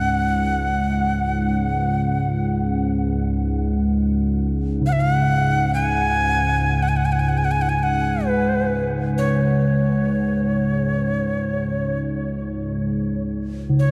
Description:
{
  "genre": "world meditative, free-time meditation music",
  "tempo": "free time",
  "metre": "none",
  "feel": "none",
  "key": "unclear",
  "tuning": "A4 = 440 Hz",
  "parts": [
    { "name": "breathy bright Native American-style cedar flute", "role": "melody", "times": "0.0-13.9 s", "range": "B4 to G#5", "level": "-26 LUFS", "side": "equal", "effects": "delay" },
    { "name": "analog drone", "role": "drone", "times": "0.0-13.9 s", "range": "C#2 to G#2", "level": "-23 LUFS", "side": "equal", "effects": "chorus" },
    { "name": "quartz singing bowl", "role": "texture", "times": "4.8-13.9 s", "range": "C#3", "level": "-27 LUFS", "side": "equal", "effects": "none" }
  ],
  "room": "wet huge ambient reverb, RT60 8.0 s",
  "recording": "in a vast, echoing space",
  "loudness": "-21 LUFS",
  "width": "mono",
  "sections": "0.0-12.9 A section; 12.9-13.9 A section",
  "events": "none",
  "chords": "none",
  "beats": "free time"
}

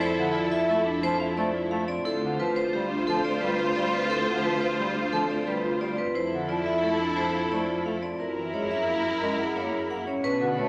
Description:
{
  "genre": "classical, minimalist pattern music",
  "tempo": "176 BPM",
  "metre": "6/4",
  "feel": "straight",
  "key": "unclear",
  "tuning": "A4 = 440 Hz",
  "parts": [
    { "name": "vibraphone with hard mallets", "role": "melody", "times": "0.0-10.7 s", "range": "G4 to F#5", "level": "-33 LUFS", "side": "equal", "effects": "none" },
    { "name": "dark clarinet", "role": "second line", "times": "0.0-10.7 s", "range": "D4 to F4", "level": "-36 LUFS", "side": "equal", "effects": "none" },
    { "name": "rich studio violin section", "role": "sustained chords", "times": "0.0-10.7 s", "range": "D4 to C5", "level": "-32 LUFS", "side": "equal", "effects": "none" },
    { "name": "marimba with medium mallets", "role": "arpeggios", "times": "0.0-10.7 s", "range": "C4 to C#5", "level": "-34 LUFS", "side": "equal", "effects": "none" },
    { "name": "warm cello", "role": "bass", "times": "0.0-10.7 s", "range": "D2 to B2", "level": "-37 LUFS", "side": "equal", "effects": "none" },
    { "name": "mellow bass clarinet", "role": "accompaniment", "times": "0.2-10.7 s", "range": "D3 to A#3", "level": "-36 LUFS", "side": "equal", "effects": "none" }
  ],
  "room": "wet recital hall reverb, RT60 1.5 s",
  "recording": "none",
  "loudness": "-27 LUFS",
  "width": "mono",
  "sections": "0.0-10.2 A section",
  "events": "none",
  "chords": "0.0 Fmaj7; 2.1 Dm11; 6.1 Fmaj7; 8.2 F#7",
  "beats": "| 0.01 0.35 0.69 1.03 1.38 1.72 | 2.06 2.40 2.74 3.08 3.42 3.76 | 4.10 4.44 4.78 5.12 5.47 5.81 | 6.15 6.49 6.83 7.17 7.51 7.85 | 8.19 8.53 8.88 9.22 9.56 9.90 | 10.24 10.58"
}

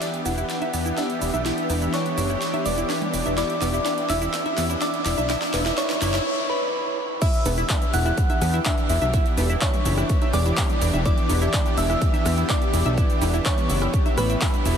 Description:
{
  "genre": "progressive house",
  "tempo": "125 BPM",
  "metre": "4/4",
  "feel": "straight",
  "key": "E dorian",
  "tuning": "A4 = 441 Hz",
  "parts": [
    { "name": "glassy synth bell", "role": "melody", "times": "0.0-14.8 s", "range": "B4 to F#6", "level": "-28 LUFS", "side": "equal", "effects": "chorus, sidechain pumping, low-pass filter, diffuse ambient delay" },
    { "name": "supersaw pad", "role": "sustained chords", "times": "0.0-14.8 s", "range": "E3 to G4", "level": "-28 LUFS", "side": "equal", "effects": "analog chorus, sidechain pumping" },
    { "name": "analog pluck", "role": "arpeggios", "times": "0.0-14.8 s", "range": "B3 to E6", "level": "-28 LUFS", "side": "equal", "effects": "chorus, phaser, sidechain pumping, tape echo" },
    { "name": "big-room dance drum kit", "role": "drums", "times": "0.0-14.8 s", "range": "crash cymbal, handclaps, hi-hat, rim click, shaker, snare drum", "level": "-30 LUFS", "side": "right 1 dB", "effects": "high-pass filter on hats, high-pass filter on snare, high-pass filter on perc, high-pass filter on cymbals, high-pass filter on room" },
    { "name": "riser and noise sweep", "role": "sound effects", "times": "0.0-7.2 s", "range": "none", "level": "-35 LUFS", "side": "right 2 dB", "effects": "none" },
    { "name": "fat analog bass", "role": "bass", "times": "0.3-14.7 s", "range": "E1 to E2", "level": "-24 LUFS", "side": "equal", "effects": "sidechain pumping" },
    { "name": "congas", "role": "percussion", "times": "0.3-14.6 s", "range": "none", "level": "-37 LUFS", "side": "right 4 dB", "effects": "none" },
    { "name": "electronic kick drum", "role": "drums", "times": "7.2-14.5 s", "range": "none", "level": "-22 LUFS", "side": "equal", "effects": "none" }
  ],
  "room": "moderate huge ambient reverb, RT60 5.1 s",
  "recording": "dreamy mix soaked in reverb",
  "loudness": "-20 LUFS",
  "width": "side -8 dB against mid",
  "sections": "0.0-7.2 A section; 7.2-14.8 B section",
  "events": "build-up 0.0-7.2; drum fill 0.0-6.3; filter sweep on synth bell 0.0-7.2; noise sweep 5.3-7.2; break 6.3-7.2; drop 7.2-14.8",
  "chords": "0.0 Em7",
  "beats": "0.02 0.50 0.98 | 1.46 1.94 2.42 2.90 | 3.38 3.86 4.34 4.82 | 5.30 5.78 6.26 6.74 | 7.22 7.70 8.18 8.66 | 9.14 9.62 10.10 10.58 | 11.06 11.54 12.02 12.50 | 12.98 13.46 13.94 14.42"
}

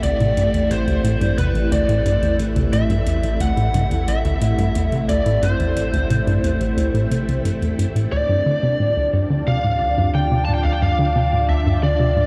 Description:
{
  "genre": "ambient, sequencer-driven space music",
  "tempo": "89 BPM",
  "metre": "4/4",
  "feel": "straight",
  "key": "A minor, D minor from 8.1 s",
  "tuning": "A4 = 440 Hz",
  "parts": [
    { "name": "lead guitar through a small cranked amp", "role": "melody", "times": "0.0-12.3 s", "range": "B4 to A5", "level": "-25 LUFS", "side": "equal", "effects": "overdrive, tape echo" },
    { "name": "string machine, full ensemble", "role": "sustained chords", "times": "0.0-12.3 s", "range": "A3 to A5", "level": "-27 LUFS", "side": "equal", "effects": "ensemble chorus" },
    { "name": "tight sequencer bass", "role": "riff", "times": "0.0-12.3 s", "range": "A1 to D3", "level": "-23 LUFS", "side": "equal", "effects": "tape echo" },
    { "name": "warm sub bass", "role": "bass", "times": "0.0-12.3 s", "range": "A1 to D2", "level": "-26 LUFS", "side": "equal", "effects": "none" },
    { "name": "soft vintage rhythm box", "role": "percussion", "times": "0.0-8.1 s", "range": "hi-hat, toms", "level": "-32 LUFS", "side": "equal", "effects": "none" }
  ],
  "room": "wet huge ambient reverb, RT60 8.0 s",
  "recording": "dark, warm production, faint mains hum",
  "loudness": "-19 LUFS",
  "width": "mono",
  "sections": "0.0-8.1 A section; 8.1-12.3 B section",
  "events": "none",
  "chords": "0.0 Am7; 8.1 Dm",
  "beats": "| 0.04 0.71 1.38 2.06 | 2.73 3.41 4.08 4.75 | 5.43 6.10 6.78 7.45 | 8.12 8.80 9.47 10.15 | 10.82 11.50 12.17"
}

